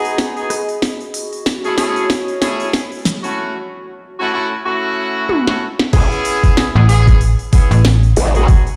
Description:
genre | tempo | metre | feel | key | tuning
glitch hop | 94 BPM | 4/4 | swing 57% on 16ths | unclear | A4 = 441 Hz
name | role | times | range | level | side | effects
warm horn section | stabs | 0.0-8.7 s | A3 to G#4 | -22 LUFS | equal | sidechain pumping, dub echo
glitchy drum kit | drums | 0.0-8.8 s | crash cymbal, hi-hat, rim click, snare drum, toms | -22 LUFS | equal | none
warbly tape-like pad | texture | 0.0-3.4 s | F#4 to B5 | -26 LUFS | equal | chorus, built-in reverb, sidechain pumping
electronic kick drum | drums | 0.2-8.6 s | none | -14 LUFS | equal | overdrive, high-pass filter on kick
growl bass | bass | 5.9-8.5 s | A1 | -16 LUFS | equal | chorus, tube saturation
slap-like FM bass | bass | 6.8-8.1 s | A1 | -12 LUFS | equal | none
room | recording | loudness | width
light reverb | played on a big sound system in a bare room, stone room reverb | -15 LUFS | mono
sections
0.0-5.9 A section; 5.9-8.8 B section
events
build-up 0.0-5.9; drum fill 0.0-3.4, 5.3-5.9; drop 5.9-8.8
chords
0.0 G#m7; 0.8 F#m7; 3.4 A6; 5.9 Amaj7

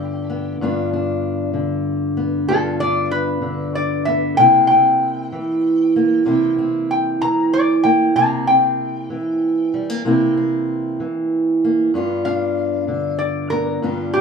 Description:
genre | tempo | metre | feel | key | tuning
acoustic country blues, solo or duo | 64 BPM (dotted quarters) | 12/8 | straight | unclear | A4 = 439 Hz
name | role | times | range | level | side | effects
lap resonator guitar | melody | 0.0-14.2 s | G4 to Bb5 | -16 LUFS | left 1 dB | none
fingerpicked steel-string acoustic guitar | accompaniment | 0.0-14.2 s | G2 to F4 | -18 LUFS | right 1 dB | none
room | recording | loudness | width
moderate large studio reverb, RT60 0.8 s | band playing live in one room | -16 LUFS | side -6 dB against mid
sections
0.0-14.2 A section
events
none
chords
0.0 G7; 4.4 C7; 11.9 G7

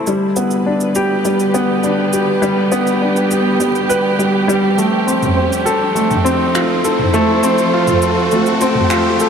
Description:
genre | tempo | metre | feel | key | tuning
piano and strings electronica | 102 BPM | 4/4 | straight | unclear | A4 = 440 Hz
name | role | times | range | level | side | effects
dark studio string section | sustained chords | 0.0-9.3 s | D3 to C5 | -20 LUFS | right 3 dB | none
dark upright piano | riff | 0.0-9.3 s | G3 to C5 | -14 LUFS | left 1 dB | ping-pong delay
riser | sound effects | 2.7-9.3 s | none | -25 LUFS | right 3 dB | none
organic electronic drum kit | drums | 0.1-9.3 s | finger snaps, shaker, toms | -22 LUFS | right 1 dB | overdrive
room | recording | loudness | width
moderate huge ambient reverb, RT60 6.3 s | none | -12 LUFS | side -7 dB against mid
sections
0.0-9.3 A section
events
build-up 0.0-9.3; riser 2.7-9.3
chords
0.1 G; 4.8 F

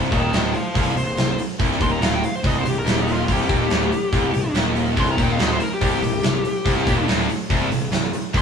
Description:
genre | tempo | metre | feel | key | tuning
hard rock | 142 BPM | 4/4 | straight | C minor | A4 = 440 Hz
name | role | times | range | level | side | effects
distorted electric guitar | riff | 0.0-8.4 s | C2 to Eb2 | -26 LUFS | left 7 dB | overdrive
distorted electric guitar | riff | 0.0-8.4 s | C2 to Eb2 | -25 LUFS | right 6 dB | overdrive
fuzz picked electric bass | bass | 0.0-8.4 s | C1 to Eb1 | -26 LUFS | left 1 dB | overdrive
high-gain lead guitar | melody | 0.1-8.4 s | Eb4 to C6 | -25 LUFS | left 2 dB | distortion
big rock drum kit | drums | 0.1-8.4 s | hi-hat, kick drum, snare drum | -23 LUFS | equal | none
heavy high-gain guitar | riff | 5.0-8.4 s | C2 to Eb2 | -28 LUFS | equal | distortion
room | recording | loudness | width
moderate stone room reverb, RT60 1.2 s | band playing live in one room, small room ambience | -18 LUFS | side -6 dB against mid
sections
0.0-8.4 A section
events
lead electric guitar solo 0.0-8.4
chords
0.0 Cm

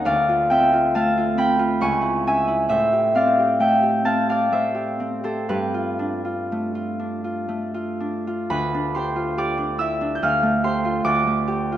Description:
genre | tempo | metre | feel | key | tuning
classical, solo harp piece | 54-73 BPM | 3/4 | rubato | D dorian | A4 = 440 Hz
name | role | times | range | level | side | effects
Celtic harp | solo | 0.0-11.8 s | C#2 to G6 | -19 LUFS | equal | none
room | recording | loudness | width
moderate concert hall reverb, RT60 1.8 s | dark, warm production | -19 LUFS | side -12 dB against mid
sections
0.0-8.5 A section; 8.5-11.8 B section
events
none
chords
0.1 Dm7; 1.8 C#m; 2.7 Am7; 5.5 G9; 8.5 Dm11; 10.2 Fadd9/D; 11.1 Gsus2/D

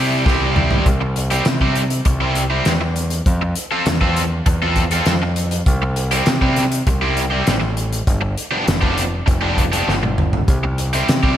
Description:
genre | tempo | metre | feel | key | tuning
indie rock | 100 BPM | 4/4 | straight | C major | A4 = 441 Hz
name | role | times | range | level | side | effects
cranked stack guitar | riff | 0.0-11.4 s | F3 to A4 | -20 LUFS | equal | overdrive
growling picked electric bass | bass | 0.0-11.4 s | F1 to C3 | -20 LUFS | equal | overdrive
loose indie drum kit | drums | 0.3-11.4 s | hi-hat, kick drum, snare drum, toms | -19 LUFS | equal | none
room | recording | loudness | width
moderate concert hall reverb, RT60 2.2 s | big arena sound | -15 LUFS | side -11 dB against mid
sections
0.9-11.4 A section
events
drum fill 0.3-0.9, 9.9-10.5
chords
0.0 C; 3.3 Fmaj7; 5.7 C6; 8.1 G7; 10.5 C

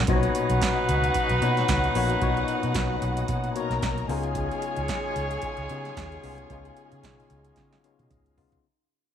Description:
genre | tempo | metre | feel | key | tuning
disco | 112 BPM | 4/4 | swing 56% on 16ths | unclear | A4 = 440 Hz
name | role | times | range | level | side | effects
tine electric piano | accompaniment | 0.0-8.7 s | A#2 to D#5 | -31 LUFS | left 8 dB | medium stereo tremolo
percussive tonewheel organ | sustained chords | 0.0-8.6 s | C#3 to E#4 | -36 LUFS | right 1 dB | overdrive, fast rotary speaker
vintage muted fingered electric bass | bass | 0.0-8.6 s | A#1 to C#3 | -28 LUFS | equal | none
dark chamber string section | second line | 0.1-8.3 s | F#4 to A#5 | -32 LUFS | left 1 dB | none
warm horn section | stabs | 0.1-8.1 s | D#4 to C#5 | -29 LUFS | equal | none
electro analog drum machine | drums | 0.1-8.6 s | hi-hat, kick drum, snare drum, toms | -31 LUFS | right 2 dB | none
room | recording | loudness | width
light reverb, digital ambience | 1960s-style stereo | -23 LUFS | side -9 dB against mid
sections
0.1-8.6 A section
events
fade-out 0.1-8.6; drum fill 7.6-8.6; tine electric piano fill 7.6-8.6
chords
0.1 Bmaj9; 4.1 C#9

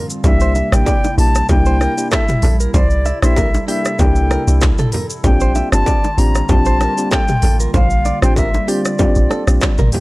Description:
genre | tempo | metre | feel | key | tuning
afrobeats | 96 BPM | 4/4 | swing 55% on 16ths | C mixolydian | A4 = 442 Hz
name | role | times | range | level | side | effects
hollow soft pad | sustained chords | 0.0-10.0 s | C3 to A4 | -25 LUFS | right 1 dB | chorus
direct-recorded clean electric guitar | riff | 0.0-10.0 s | G4 to E5 | -26 LUFS | right 4 dB | none
industrial drum kit | drums | 0.1-10.0 s | handclaps, hi-hat, kick drum, rim click, shaker, toms | -18 LUFS | equal | distortion
soft electric-piano-like synth keys | accompaniment | 0.2-9.7 s | Bb3 to G4 | -21 LUFS | left 1 dB | chorus
deep log drum bass | bass | 0.2-9.9 s | G1 to C2 | -14 LUFS | equal | none
congas and bongos | percussion | 0.2-10.0 s | none | -24 LUFS | equal | none
concert flute | melody | 0.3-9.9 s | D5 to Bb5 | -21 LUFS | left 1 dB | none
room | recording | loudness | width
little or no reverb | dry, gritty hardware recording | -12 LUFS | side -20 dB against mid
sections
0.0-10.0 A section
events
none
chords
0.2 C7; 5.2 Bb6

